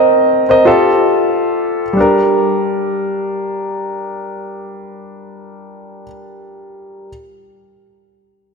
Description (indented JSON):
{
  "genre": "dancehall",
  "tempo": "92 BPM",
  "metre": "4/4",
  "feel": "straight",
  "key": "G minor",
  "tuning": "A4 = 439 Hz",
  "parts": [
    { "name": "warm grand piano", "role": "accompaniment", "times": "0.0-7.1 s", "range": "G3 to Eb5", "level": "-14 LUFS", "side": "equal", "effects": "none" }
  ],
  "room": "wet lush hall reverb, RT60 2.9 s",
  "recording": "dreamy mix soaked in reverb",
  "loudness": "-12 LUFS",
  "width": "side -4 dB against mid",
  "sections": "0.0-2.0 A section; 2.0-4.6 B section",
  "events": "none",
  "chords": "0.0 Cm7; 0.7 Fadd9; 2.0 Gm"
}